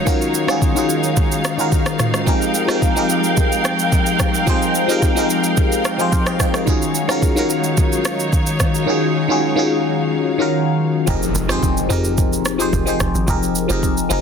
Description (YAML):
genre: amapiano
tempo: 109 BPM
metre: 4/4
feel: straight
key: F phrygian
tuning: A4 = 441 Hz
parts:
  - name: barking FM electric piano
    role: accompaniment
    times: 0.0-14.2 s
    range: Eb3 to G5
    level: -18 LUFS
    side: left 2 dB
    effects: phaser
  - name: warm studio string section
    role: sustained chords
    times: 0.0-11.0 s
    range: Gb3 to G5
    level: -22 LUFS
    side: right 2 dB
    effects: none
  - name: smooth R&B drum kit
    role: drums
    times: 0.1-14.2 s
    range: kick drum, rim click, shaker, toms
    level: -19 LUFS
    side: right 1 dB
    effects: none
  - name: tight log drum bass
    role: bass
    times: 11.1-14.2 s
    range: F1 to F2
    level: -23 LUFS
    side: equal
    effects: none
  - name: impact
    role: sound effects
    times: 11.1-13.3 s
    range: none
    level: -28 LUFS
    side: right 2 dB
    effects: none
room: light reverb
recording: dense, heavily limited modern master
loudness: -15 LUFS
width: side -6 dB against mid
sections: 0.0-11.1 A section; 11.1-14.2 B section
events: FM electric piano fill 5.6-6.7; drop 11.1-14.2; impact 11.1-13.3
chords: 0.0 Ebm11; 2.3 Fm11; 6.7 Ebm11; 11.1 Fm11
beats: | 0.07 0.62 1.17 1.72 | 2.27 2.82 3.37 3.92 | 4.47 5.02 5.57 6.12 | 6.67 7.22 7.78 8.33 | 8.88 9.43 9.98 10.53 | 11.08 11.63 12.18 12.73 | 13.28 13.83